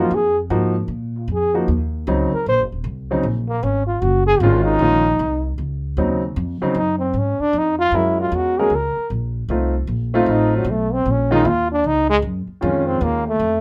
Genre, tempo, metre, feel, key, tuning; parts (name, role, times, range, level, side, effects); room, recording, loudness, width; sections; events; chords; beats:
jazz, small-group swing and bop; 154 BPM; 4/4; swing 65% on 8ths; Bb minor; A4 = 440 Hz
breathy trombone; second line; 0.0-13.6 s; Gb3 to C5; -21 LUFS; equal
warm grand piano; accompaniment; 0.0-13.2 s; Db3 to Bb4; -23 LUFS; equal
upright bass; bass; 0.0-13.6 s; Eb1 to Bb2; -24 LUFS; equal
light reverb; -19 LUFS; mono
0.0-13.6 A section
trombone solo 0.0-13.6
0.0 Bb7(no3); 1.7 Ebm7; 4.8 Bbm7; 7.9 Gb7; 9.5 F7; 11.1 Bbm7
| 0.11 0.50 0.89 1.28 | 1.67 2.06 2.46 2.85 | 3.24 3.63 4.02 4.41 | 4.80 5.19 5.58 5.97 | 6.37 6.75 7.15 7.54 | 7.93 8.32 8.71 9.10 | 9.49 9.88 10.27 10.66 | 11.05 11.44 11.83 12.22 | 12.62 13.01 13.40